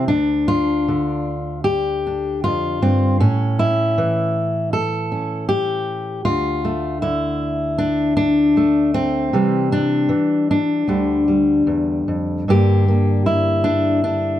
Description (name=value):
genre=folk, solo fingerstyle acoustic guitar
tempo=78 BPM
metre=4/4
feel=rubato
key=D minor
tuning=A4 = 440 Hz
part: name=fingerpicked steel-string acoustic guitar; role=solo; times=0.0-14.4 s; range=D2 to A4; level=-16 LUFS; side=equal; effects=none
room=moderate small room reverb, RT60 0.5 s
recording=dark, warm production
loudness=-16 LUFS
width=side -12 dB against mid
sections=0.0-12.5 A section; 12.5-14.4 B section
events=none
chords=0.1 Dm; 3.2 A; 6.3 Dm; 9.3 C; 10.9 Dmadd9; 12.5 Gm